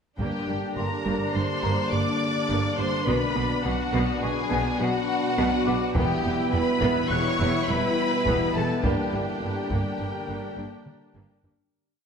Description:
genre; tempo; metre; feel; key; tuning
cinematic, hybrid orchestral and electronic film score; 104 BPM; 5/4; straight; unclear; A4 = 440 Hz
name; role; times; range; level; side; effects
dark studio violin section; melody; 0.2-11.4 s; F#5 to D6; -31 LUFS; left 3 dB; none
warm symphonic violin section; second line; 0.2-11.4 s; F#4 to D5; -31 LUFS; left 3 dB; none
warm studio viola section; accompaniment; 0.2-11.5 s; Bb3 to E4; -32 LUFS; right 1 dB; none
dark trombone section; sustained chords; 0.2-11.4 s; B2 to B3; -36 LUFS; right 4 dB; none
mellow French horn section; sustained chords; 0.2-11.4 s; Bb3 to E4; -34 LUFS; left 3 dB; none
metallic inharmonic drone; sustained chords; 1.0-11.7 s; D3 to D5; -32 LUFS; equal; chorus, built-in reverb
harp-like synth pluck; arpeggios; 0.2-11.6 s; E3 to B4; -35 LUFS; right 1 dB; chorus, ping-pong delay
rich symphonic cello section; bass; 0.2-11.5 s; E2 to B2; -31 LUFS; right 2 dB; none
warm symphonic double bass section; bass; 0.2-11.5 s; E1 to B1; -32 LUFS; right 2 dB; none
taiko ensemble; drums; 0.2-1.3, 6.0-11.7 s; none; -32 LUFS; left 1 dB; none
felt-muted upright piano; texture; 0.8-8.9 s; Bb4 to F#6; -38 LUFS; left 2 dB; ping-pong delay
room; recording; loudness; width
wet scoring stage reverb, RT60 1.6 s; none; -22 LUFS; side -6 dB against mid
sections
0.2-11.7 theme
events
fade-out 8.8-11.7; drum fill 10.9-11.7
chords
0.2 Gm; 3.1 Bm; 6.0 Em; 8.8 Gm

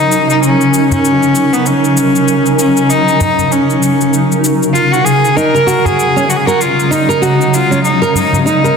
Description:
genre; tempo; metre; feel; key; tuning
organic downtempo; 97 BPM; 4/4; swing 58% on 16ths; Eb minor; A4 = 440 Hz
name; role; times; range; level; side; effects
bright cello; melody; 0.0-8.8 s; Cb4 to Bb4; -12 LUFS; left 1 dB; tape echo
granular cloud pad; sustained chords; 0.0-8.8 s; Db3 to Bb4; -14 LUFS; equal; built-in reverb
cabasa; drums; 0.1-8.7 s; none; -22 LUFS; left 3 dB; none
udu; percussion; 0.9-8.4 s; none; -22 LUFS; equal; none
nylon-string guitar; arpeggios; 5.4-8.8 s; Db4 to Bb4; -14 LUFS; right 2 dB; digital delay
room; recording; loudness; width
wet lush hall reverb, RT60 2.3 s; dense, heavily limited modern master; -9 LUFS; side -6 dB against mid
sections
0.0-8.8 A section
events
none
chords
0.0 Ebm7

